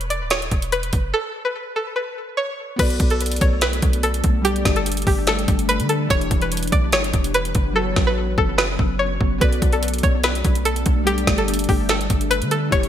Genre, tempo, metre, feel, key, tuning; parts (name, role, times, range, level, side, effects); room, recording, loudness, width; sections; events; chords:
hip hop, trap; 145 BPM; 4/4; half-time; B minor; A4 = 441 Hz
string-like resonator pluck; melody; 0.0-12.9 s; G4 to D5; -23 LUFS; equal; chorus, ping-pong delay
warm 808-style bass; bass; 0.0-12.9 s; D1 to D3; -24 LUFS; equal
trap drum kit; drums; 0.0-12.9 s; crash cymbal, hi-hat, kick drum, snare drum; -20 LUFS; equal; gated reverb
glassy digital keys; accompaniment; 2.8-12.9 s; E3 to D5; -28 LUFS; left 3 dB; chorus
ethereal airy pad; sustained chords; 3.5-12.9 s; E3 to G4; -28 LUFS; left 1 dB; ensemble chorus, built-in reverb
light reverb, digital ambience; bright 1980s-style digital production; -17 LUFS; side -10 dB against mid
0.0-2.8 A section; 2.8-12.9 B section
break 1.1-2.8; hi-hats muted 7.8-9.4
0.0 Dmaj13; 1.1 N.C.; 2.8 Bm7; 4.4 Gsus2; 6.1 Em7; 7.8 F#sus4; 9.4 Bm7; 11.1 Gsus2